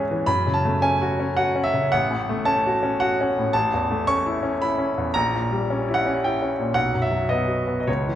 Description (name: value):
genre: classical, romantic character piece for solo piano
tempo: 111 BPM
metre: 3/4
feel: rubato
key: unclear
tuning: A4 = 440 Hz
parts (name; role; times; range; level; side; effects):
- clear grand piano; solo; 0.0-8.2 s; A1 to C#6; -20 LUFS; equal; none
room: wet recital hall reverb, RT60 1.7 s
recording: none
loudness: -20 LUFS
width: side -11 dB against mid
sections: 0.0-8.2 A section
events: none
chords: 0.3 F#m; 1.9 F#m/A; 3.5 A; 5.1 A#dim7; 6.8 B